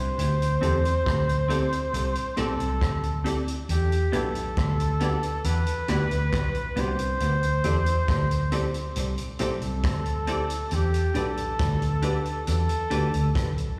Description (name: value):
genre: lovers rock reggae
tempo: 68 BPM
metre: 4/4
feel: straight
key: E minor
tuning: A4 = 438 Hz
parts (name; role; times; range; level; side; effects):
- warm flugelhorn; melody; 0.0-13.5 s; G4 to C5; -32 LUFS; equal; tape echo, plate reverb, slapback echo
- vintage muted fingered electric bass; bass; 0.0-13.7 s; B1 to E2; -28 LUFS; equal; none
- vintage drum kit; drums; 0.2-13.8 s; hi-hat, kick drum, rim click; -35 LUFS; equal; none
- mellow FM electric piano; accompaniment; 0.6-13.2 s; C4 to C5; -36 LUFS; equal; chorus, dub echo, plate reverb, slapback echo
- semi-hollow electric guitar; stabs; 0.6-13.0 s; B3 to D5; -38 LUFS; equal; ensemble chorus, dub echo, plate reverb, slapback echo
room: light reverb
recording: live gig heard through the venue's PA, recital hall reverb, small room ambience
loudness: -25 LUFS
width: mono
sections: 0.0-13.8 A section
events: none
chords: 0.2 D7sus4; 3.7 Em7; 7.2 D7sus4; 10.7 Em7